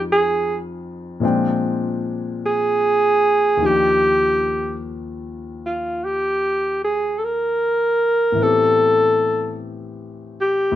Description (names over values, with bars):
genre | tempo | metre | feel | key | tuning
jazz ballad | 50 BPM | 4/4 | swing 67% on 8ths | Eb major | A4 = 440 Hz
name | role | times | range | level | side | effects
breathy alto saxophone | melody | 0.0-10.8 s | F4 to Bb4 | -16 LUFS | equal | none
warm baby grand piano | accompaniment | 0.0-10.8 s | D2 to G5 | -25 LUFS | left 4 dB | none
room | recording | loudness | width
moderate large studio reverb, RT60 0.9 s | none | -17 LUFS | side -12 dB against mid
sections
0.0-3.6 A section; 3.6-10.8 B section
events
alto saxophone solo 0.0-3.6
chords
0.0 Fm9; 1.2 Bb13; 3.6 Ebmaj9; 8.4 Am7